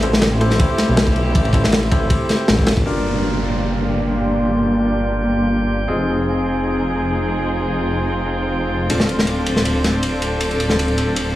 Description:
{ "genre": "drum and bass, jungle", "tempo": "159 BPM", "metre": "4/4", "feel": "swing 53% on 16ths", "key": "unclear", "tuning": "A4 = 440 Hz", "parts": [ { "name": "dark chamber string section", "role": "sustained chords", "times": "0.0-11.4 s", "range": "A3 to A4", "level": "-21 LUFS", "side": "equal", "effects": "low-pass filter" }, { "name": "clear concert grand piano", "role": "stabs", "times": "0.0-11.4 s", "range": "A3 to C5", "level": "-25 LUFS", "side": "left 1 dB", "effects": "vintage 12-bit sampler grit, dub echo" }, { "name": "detuned saw bass", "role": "bass", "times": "0.0-11.4 s", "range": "D1 to B1", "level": "-21 LUFS", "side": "equal", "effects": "tube saturation" }, { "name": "crunchy breakbeat drum kit", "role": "drums", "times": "0.0-2.9, 8.9-11.3 s", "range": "kick drum, ride cymbal, snare drum", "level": "-18 LUFS", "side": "equal", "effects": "none" }, { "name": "downlifter", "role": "sound effects", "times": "2.9-5.9 s", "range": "none", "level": "-26 LUFS", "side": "right 3 dB", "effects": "none" }, { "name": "drifting glass-harmonics texture", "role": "texture", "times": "3.8-11.4 s", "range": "G5", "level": "-30 LUFS", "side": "right 2 dB", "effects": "chorus, built-in reverb" } ], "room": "moderate plate reverb, RT60 1.4 s, small room ambience", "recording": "heavily compressed radio sound, small room reverb", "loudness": "-16 LUFS", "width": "side -14 dB against mid", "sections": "0.0-2.9 A section; 2.9-11.4 B section", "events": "drop 0.0-2.9; filter sweep on string section 2.9-11.4", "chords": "0.0 Am7; 2.9 Gm7; 5.9 Fm7; 8.9 Dm7" }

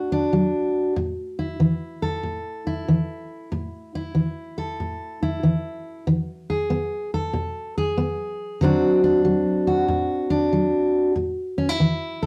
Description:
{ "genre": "blues", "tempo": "94 BPM", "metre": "4/4", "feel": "swing 66% on 8ths", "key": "unclear", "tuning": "A4 = 441 Hz", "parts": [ { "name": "fingerpicked steel-string acoustic guitar", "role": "solo", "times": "0.0-12.3 s", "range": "A2 to A4", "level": "-23 LUFS", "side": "equal", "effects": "none" } ], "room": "wet studio reverb, RT60 0.6 s", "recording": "heard from further back in the room", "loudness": "-23 LUFS", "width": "mono", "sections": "0.0-12.3 A section", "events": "none", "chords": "0.0 D; 1.0 A5; 6.1 E; 8.6 D7; 11.2 A5" }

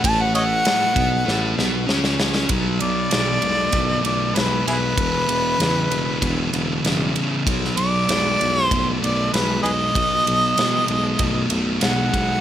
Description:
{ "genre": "blues rock power trio and southern rock", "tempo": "97 BPM", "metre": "4/4", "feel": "straight", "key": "unclear", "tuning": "A4 = 440 Hz", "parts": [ { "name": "warm harmonica", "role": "melody", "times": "0.0-12.4 s", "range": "E4 to A5", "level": "-21 LUFS", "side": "equal", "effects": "overdrive" }, { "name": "thick fuzz guitar", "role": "riff", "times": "0.0-12.4 s", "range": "E2 to C#4", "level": "-22 LUFS", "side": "equal", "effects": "distortion" }, { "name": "dark tuba", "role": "bass", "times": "0.0-12.4 s", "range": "E1 to B2", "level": "-26 LUFS", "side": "equal", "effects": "none" }, { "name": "big rock drum kit", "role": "drums", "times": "0.0-12.3 s", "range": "kick drum, ride cymbal, snare drum", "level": "-24 LUFS", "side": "equal", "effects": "none" } ], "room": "light reverb", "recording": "none", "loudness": "-17 LUFS", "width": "side -11 dB against mid", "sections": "0.0-2.5 A section; 2.5-12.4 B section", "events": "harmonica solo 0.0-2.5; drum fill 1.3-2.5", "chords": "0.0 F#m; 2.5 Bm7; 5.0 E5; 7.5 B7#9" }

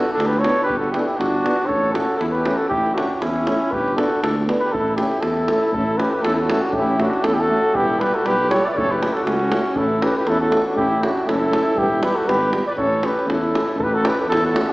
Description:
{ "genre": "balkan folk, Balkan brass band", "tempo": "119 BPM", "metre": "2/4", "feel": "swing 55% on 16ths", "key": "A mixolydian", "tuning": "A4 = 440 Hz", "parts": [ { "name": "mellow flugelhorn", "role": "melody", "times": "0.0-14.7 s", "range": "E4 to E5", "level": "-20 LUFS", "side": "equal", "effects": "none" }, { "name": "warm trumpet", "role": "second line", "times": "0.0-14.7 s", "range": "C#4 to C#5", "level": "-26 LUFS", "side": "left 1 dB", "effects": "none" }, { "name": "clear French horn", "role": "accompaniment", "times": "0.0-14.6 s", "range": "B3 to D4", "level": "-28 LUFS", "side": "left 1 dB", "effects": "none" }, { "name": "warm euphonium", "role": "accompaniment", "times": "0.0-14.6 s", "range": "G3 to B3", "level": "-27 LUFS", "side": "right 1 dB", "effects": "none" }, { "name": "dark tuba", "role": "bass", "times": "0.2-14.5 s", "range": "E1 to E2", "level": "-26 LUFS", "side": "equal", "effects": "none" }, { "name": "davul", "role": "percussion", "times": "0.2-14.7 s", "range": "none", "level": "-26 LUFS", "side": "right 1 dB", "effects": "none" } ], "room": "wet scoring stage reverb, RT60 2.0 s", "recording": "heard from further back in the room, small speaker sound", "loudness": "-17 LUFS", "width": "side -20 dB against mid", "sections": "0.0-5.7 A section; 5.7-13.8 B section", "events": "none", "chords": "0.0 G; 1.7 A; 3.7 G; 4.7 A; 7.7 Em; 8.8 F#m; 9.8 A; 11.8 Em; 12.8 A" }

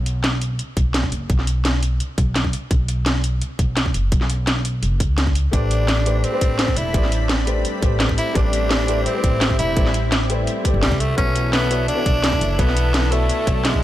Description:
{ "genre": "liquid drum and bass", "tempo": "170 BPM", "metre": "4/4", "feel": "straight", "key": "A dorian", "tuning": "A4 = 440 Hz", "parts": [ { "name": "upright bass", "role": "bass", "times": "0.0-13.8 s", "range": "E1 to C#2", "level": "-21 LUFS", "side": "equal", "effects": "none" }, { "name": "drum and bass drum kit", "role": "drums", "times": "0.1-13.7 s", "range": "hi-hat, snare drum", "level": "-23 LUFS", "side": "equal", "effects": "none" }, { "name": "electronic kick drum", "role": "drums", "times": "0.8-13.8 s", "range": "none", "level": "-20 LUFS", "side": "equal", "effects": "none" }, { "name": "raspy tenor saxophone", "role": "melody", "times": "5.5-13.8 s", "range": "G3 to E4", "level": "-24 LUFS", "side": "equal", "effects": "dub echo" }, { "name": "felt-muted upright piano", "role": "accompaniment", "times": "5.5-13.8 s", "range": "A3 to E5", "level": "-26 LUFS", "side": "left 3 dB", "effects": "tape echo" }, { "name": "lush unison pad", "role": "sustained chords", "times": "5.5-13.8 s", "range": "E3 to B5", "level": "-28 LUFS", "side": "equal", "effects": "chorus" } ], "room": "small room ambience", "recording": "none", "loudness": "-17 LUFS", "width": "side -14 dB against mid", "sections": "0.0-13.8 A section", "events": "none", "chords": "0.0 N.C.; 5.5 Am11; 11.2 Bm11" }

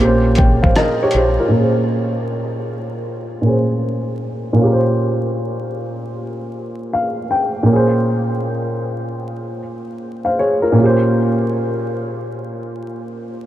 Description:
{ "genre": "lo-fi hip hop", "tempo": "78 BPM", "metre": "4/4", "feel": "swing 65% on 16ths", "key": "Bb dorian", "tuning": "A4 = 439 Hz", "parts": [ { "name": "dark upright piano", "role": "accompaniment", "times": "0.0-13.5 s", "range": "Bb2 to G5", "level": "-16 LUFS", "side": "equal", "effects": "low-pass filter" }, { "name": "deep dub fingered electric bass", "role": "bass", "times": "0.0-1.4 s", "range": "Ab1 to Bb1", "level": "-18 LUFS", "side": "equal", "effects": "none" }, { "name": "dusty soul sampler-style drum kit", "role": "drums", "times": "0.4-1.4 s", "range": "hi-hat, kick drum, rim click", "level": "-18 LUFS", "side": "equal", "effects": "overdrive, vintage 12-bit sampler grit" } ], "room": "moderate huge ambient reverb, RT60 8.0 s", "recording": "dreamy mix soaked in reverb, vinyl crackle", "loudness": "-15 LUFS", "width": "side -13 dB against mid", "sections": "0.0-1.5 A section; 1.5-13.5 B section", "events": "filter sweep on upright piano 1.5-13.5; upright piano fill 6.5-7.7", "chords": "0.0 Bbm69; 1.5 Bbm7; 4.6 Bbm69; 7.7 Bbm7; 10.8 Bbm69" }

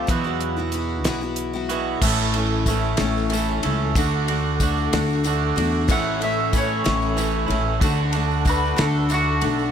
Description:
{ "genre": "folk rock and heartland rock", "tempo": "62 BPM (dotted quarters)", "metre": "6/8", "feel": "straight", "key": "A major", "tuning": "A4 = 439 Hz", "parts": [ { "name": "mandolin", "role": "second line", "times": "0.0-0.1, 5.9-9.4 s", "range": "F#4 to F#5", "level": "-27 LUFS", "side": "left 3 dB", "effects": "analog delay" }, { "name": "picked twelve-string acoustic guitar", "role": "accompaniment", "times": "0.0-9.7 s", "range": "E2 to F#4", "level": "-26 LUFS", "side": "left 7 dB", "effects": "none" }, { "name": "twangy electric guitar", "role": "riff", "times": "0.0-9.7 s", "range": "E2 to A4", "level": "-25 LUFS", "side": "right 15 dB", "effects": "spring reverb" }, { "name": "upright bass", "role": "bass", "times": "0.0-9.7 s", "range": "A1 to E2", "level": "-24 LUFS", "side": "equal", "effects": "none" }, { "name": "damped 70s drum kit", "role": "drums", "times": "0.1-9.6 s", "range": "crash cymbal, hi-hat, kick drum, ride cymbal, snare drum", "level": "-26 LUFS", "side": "equal", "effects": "none" }, { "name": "mellow tonewheel organ", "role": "sustained chords", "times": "2.0-9.7 s", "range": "A4 to D6", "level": "-34 LUFS", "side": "left 1 dB", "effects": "chorus vibrato, stopped rotary speaker" }, { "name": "tambourine", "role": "percussion", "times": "2.0-9.7 s", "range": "none", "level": "-37 LUFS", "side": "left 11 dB", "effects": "none" } ], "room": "light reverb, small room ambience", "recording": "none", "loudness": "-19 LUFS", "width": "side -8 dB against mid", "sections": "0.0-2.0 A section; 2.0-9.7 B section", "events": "none", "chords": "0.1 Esus2; 2.0 A; 4.0 D; 5.9 A; 7.8 D" }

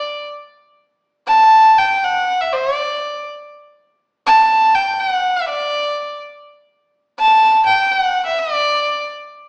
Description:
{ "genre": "indian classical", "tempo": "free time", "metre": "none", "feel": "none", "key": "D major", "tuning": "A4 = 441 Hz", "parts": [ { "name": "warm violin", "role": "solo", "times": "0.0-9.1 s", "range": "D5 to A5", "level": "-12 LUFS", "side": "equal", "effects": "none" } ], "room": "wet recital hall reverb, RT60 1.2 s", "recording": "recorded in a church or concert hall, small speaker sound", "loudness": "-12 LUFS", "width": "side -26 dB against mid", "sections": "0.0-9.5 A section", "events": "speeding up 0.0-9.5", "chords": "none" }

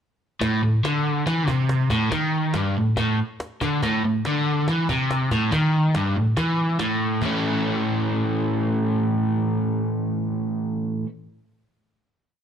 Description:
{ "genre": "garage rock duo or trio", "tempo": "141 BPM", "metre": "4/4", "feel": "straight", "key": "A mixolydian", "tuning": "A4 = 440 Hz", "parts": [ { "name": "crunchy overdriven guitar", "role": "riff", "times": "0.4-11.1 s", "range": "G2 to E4", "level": "-20 LUFS", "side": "equal", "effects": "none" }, { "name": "cajon", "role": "drums", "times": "0.4-7.3 s", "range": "none", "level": "-31 LUFS", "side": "equal", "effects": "none" } ], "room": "moderate stone room reverb, RT60 1.1 s", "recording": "cassette tape", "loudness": "-20 LUFS", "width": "side -8 dB against mid", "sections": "0.4-7.2 riff; 7.2-10.6 final chord", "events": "none", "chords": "0.4 A5; 7.2 A" }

